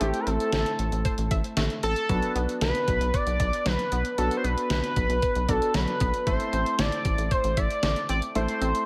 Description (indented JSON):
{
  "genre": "synth-pop",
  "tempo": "115 BPM",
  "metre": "4/4",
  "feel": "straight",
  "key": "A dorian",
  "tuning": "A4 = 440 Hz",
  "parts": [
    { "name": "octave-doubled lead", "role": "melody", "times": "0.0-8.9 s", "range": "G4 to D5", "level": "-30 LUFS", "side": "equal", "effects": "chorus, tape echo" },
    { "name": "warm concert grand piano", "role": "accompaniment", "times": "0.0-8.9 s", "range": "A3 to B4", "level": "-35 LUFS", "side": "equal", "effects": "none" },
    { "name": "analog pluck", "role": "arpeggios", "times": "0.0-8.8 s", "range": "F#3 to E5", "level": "-38 LUFS", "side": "equal", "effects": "chorus, tape echo" },
    { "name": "rubbery square bass", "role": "bass", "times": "0.0-8.7 s", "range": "A1 to B1", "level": "-31 LUFS", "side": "equal", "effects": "none" },
    { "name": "detuned 8-bit digital drum machine", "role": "drums", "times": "0.0-8.9 s", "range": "hi-hat, kick drum, snare drum", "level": "-31 LUFS", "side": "equal", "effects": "gated reverb" }
  ],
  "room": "light reverb",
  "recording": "none",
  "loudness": "-26 LUFS",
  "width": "mono",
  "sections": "0.0-8.9 A section",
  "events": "none",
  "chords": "0.0 Am; 2.1 Bm; 6.3 Am"
}